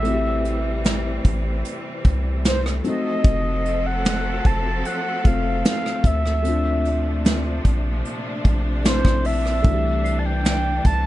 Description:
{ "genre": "contemporary R&B", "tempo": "75 BPM", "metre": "4/4", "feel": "straight", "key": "unclear", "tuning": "A4 = 440 Hz", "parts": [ { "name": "mellow horn-like synth lead", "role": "melody", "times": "0.0-11.1 s", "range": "C5 to A5", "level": "-26 LUFS", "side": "equal", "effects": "chorus" }, { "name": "felt-muted upright piano", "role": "accompaniment", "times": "0.0-11.1 s", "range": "E3 to A4", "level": "-28 LUFS", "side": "left 3 dB", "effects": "none" }, { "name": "clear symphonic string section", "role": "sustained chords", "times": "0.0-11.1 s", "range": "Bb2 to A4", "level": "-29 LUFS", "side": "equal", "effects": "none" }, { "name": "long sustained 808-style bass", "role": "bass", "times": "0.0-11.1 s", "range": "F1 to D2", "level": "-23 LUFS", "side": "equal", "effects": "none" }, { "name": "soft brush drum kit", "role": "drums", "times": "0.0-11.0 s", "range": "hi-hat, kick drum, rim click, snare drum", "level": "-20 LUFS", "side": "equal", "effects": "none" }, { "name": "downlifter", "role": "sound effects", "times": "0.0-3.2 s", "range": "none", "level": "barely audible", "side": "none", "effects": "none" }, { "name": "worn celesta", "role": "texture", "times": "10.0-10.8 s", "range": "C7", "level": "-37 LUFS", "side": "equal", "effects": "none" } ], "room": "little or no reverb", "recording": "nothing above 11.0 kHz", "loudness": "-19 LUFS", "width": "side -15 dB against mid", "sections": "0.0-11.1 A section", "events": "none", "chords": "0.0 Am7; 2.8 F7b9; 6.4 Bbmaj9; 9.6 C69" }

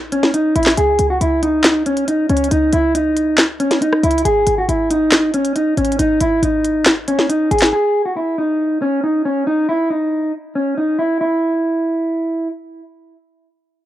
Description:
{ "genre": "hip hop, trap", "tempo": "138 BPM", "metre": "4/4", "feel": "half-time", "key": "unclear", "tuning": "A4 = 439 Hz", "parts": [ { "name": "short 808-style bass", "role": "bass", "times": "0.0-7.7 s", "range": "G#1 to C#2", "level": "-21 LUFS", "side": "equal", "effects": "none" }, { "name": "mellow electric guitar", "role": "melody", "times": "0.1-12.5 s", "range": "C#4 to G#4", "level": "-15 LUFS", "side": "equal", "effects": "cassette tape" }, { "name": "trap drum kit", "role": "drums", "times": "0.1-7.7 s", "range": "handclaps, hi-hat, rim click, snare drum", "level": "-16 LUFS", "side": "equal", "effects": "cassette tape" } ], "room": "little or no reverb", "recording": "home recording on cassette, low-pass filter", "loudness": "-14 LUFS", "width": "side -13 dB against mid", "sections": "0.0-7.7 A section; 7.7-11.2 B section; 11.2-13.9 C section", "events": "filter sweep 7.7-11.2", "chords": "0.0 A(#11); 0.8 C#sus2; 4.3 G#5; 7.7 N.C." }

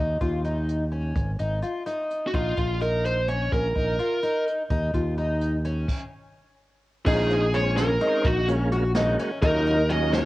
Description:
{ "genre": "progressive instrumental, band music in an uneven meter", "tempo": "254 BPM (eighths)", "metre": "5/8", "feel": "straight", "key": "Bb minor", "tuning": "A4 = 440 Hz", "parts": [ { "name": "fingerpicked twelve-string acoustic guitar", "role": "arpeggios", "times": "0.0-10.3 s", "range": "Db4 to Gb4", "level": "-28 LUFS", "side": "left 2 dB", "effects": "none" }, { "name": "modern bright fingered electric bass", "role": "bass", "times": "0.0-10.3 s", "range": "Ab1 to Eb2", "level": "-26 LUFS", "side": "equal", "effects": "none" }, { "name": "jazz brush drum kit", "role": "drums", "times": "0.2-10.2 s", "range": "crash cymbal, hi-hat, kick drum, snare drum", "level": "-28 LUFS", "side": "equal", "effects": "cassette tape" }, { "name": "bluesy overdriven lead guitar", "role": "melody", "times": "2.3-4.4, 7.1-10.3 s", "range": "F4 to Eb5", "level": "-25 LUFS", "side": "right 1 dB", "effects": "distortion, cassette tape" }, { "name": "tonewheel organ", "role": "accompaniment", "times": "7.1-10.3 s", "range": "Gb3 to Ab4", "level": "-30 LUFS", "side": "right 2 dB", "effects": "chorus vibrato, fast rotary speaker" } ], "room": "moderate spring reverb, RT60 1.9 s, studio ambience", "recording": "home recording on cassette, faint mains hum", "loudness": "-22 LUFS", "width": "side -17 dB against mid", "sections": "0.0-7.1 A section; 7.1-10.3 B section", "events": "stop 5.9-7.1; lead electric guitar solo 7.1-10.3", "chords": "0.0 Ebsus2; 1.2 Ab5; 2.3 Bbmadd11; 4.7 Ebsus2; 5.9 N.C.; 7.1 Bbm7; 8.3 Gbmaj7/Bb; 9.4 Ebm7" }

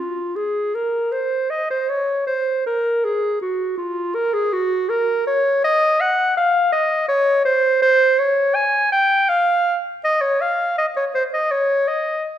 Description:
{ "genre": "classical, baroque-style fantasia for unaccompanied clarinet", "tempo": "80 BPM", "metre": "3/4", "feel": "rubato", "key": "Db major", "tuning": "A4 = 439 Hz", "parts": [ { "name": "clear clarinet", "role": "solo", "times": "0.0-12.3 s", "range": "F4 to Ab5", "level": "-17 LUFS", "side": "equal", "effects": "none" } ], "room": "wet recital hall reverb, RT60 1.5 s", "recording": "none", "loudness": "-16 LUFS", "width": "side -10 dB against mid", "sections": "0.0-12.4 A section", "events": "none", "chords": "none" }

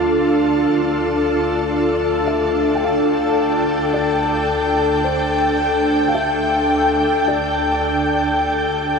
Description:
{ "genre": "ambient", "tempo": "54 BPM", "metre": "4/4", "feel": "straight", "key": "unclear", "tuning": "A4 = 440 Hz", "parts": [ { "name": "felt-muted upright piano", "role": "melody", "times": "0.0-8.9 s", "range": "C5 to G5", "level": "-28 LUFS", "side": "right 1 dB", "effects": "ping-pong delay" }, { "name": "ethereal airy pad", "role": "sustained chords", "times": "0.0-9.0 s", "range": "D4 to G5", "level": "-16 LUFS", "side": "left 1 dB", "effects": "ensemble chorus, built-in reverb" }, { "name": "clear chamber double bass section", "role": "bass", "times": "0.0-9.0 s", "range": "D2", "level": "-29 LUFS", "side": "equal", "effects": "none" } ], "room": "wet shimmer reverb, RT60 7.4 s", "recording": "none", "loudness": "-15 LUFS", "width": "side -5 dB against mid", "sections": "0.0-9.0 A section", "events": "fade-in on felt piano 0.0-9.0", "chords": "0.0 Dm" }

